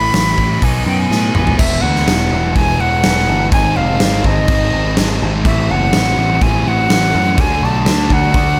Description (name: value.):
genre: quiet-loud alternative rock.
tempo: 124 BPM.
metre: 4/4.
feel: straight.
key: unclear.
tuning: A4 = 440 Hz.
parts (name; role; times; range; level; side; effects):
breathy bright jazz flute; melody; 0.0-8.6 s; D#5 to B5; -20 LUFS; equal; slapback echo.
scooped high-gain guitar; riff; 0.0-1.6 s; A2 to E4; -25 LUFS; equal; distortion.
thick fuzz guitar; riff; 0.0-8.6 s; G#2 to F#4; -22 LUFS; equal; distortion.
growling picked electric bass; bass; 0.0-8.6 s; E1 to A2; -20 LUFS; equal; overdrive.
big rock drum kit; drums; 0.1-8.5 s; crash cymbal, hi-hat, kick drum, snare drum, toms; -19 LUFS; equal; none.
room: little or no reverb.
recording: none.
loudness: -14 LUFS.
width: mono.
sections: 0.0-1.6 A section; 1.6-8.6 B section.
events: flute solo 0.0-1.6; drum fill 1.1-1.6.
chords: 0.0 Am; 0.6 B7; 1.6 E; 3.5 G#; 5.5 Am; 7.4 D.